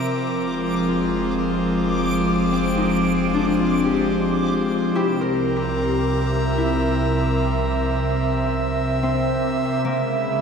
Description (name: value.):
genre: ambient.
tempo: 74 BPM.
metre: 3/4.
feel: straight.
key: F dorian.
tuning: A4 = 440 Hz.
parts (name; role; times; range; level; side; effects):
airy breathy pad; sustained chords; 0.0-10.4 s; C3 to Cb6; -20 LUFS; right 1 dB; chorus, shimmer reverb.
analog drone; drone; 0.0-9.9 s; F3 to C4; -35 LUFS; left 1 dB; none.
backwards swelling texture; texture; 0.0-9.9 s; D6; -31 LUFS; right 1 dB; built-in reverb, shimmer reverb.
round analog bass; bass; 0.1-10.4 s; F1 to Db2; -29 LUFS; equal; none.
concert harp; arpeggios; 0.9-10.4 s; Bb3 to Bb4; -25 LUFS; left 4 dB; ping-pong delay, shimmer reverb.
room: wet scoring stage reverb, RT60 2.2 s.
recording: none.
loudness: -19 LUFS.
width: side -6 dB against mid.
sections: 0.0-9.8 A section.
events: none.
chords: 0.1 Fm7; 5.0 C7; 9.8 Dbm7.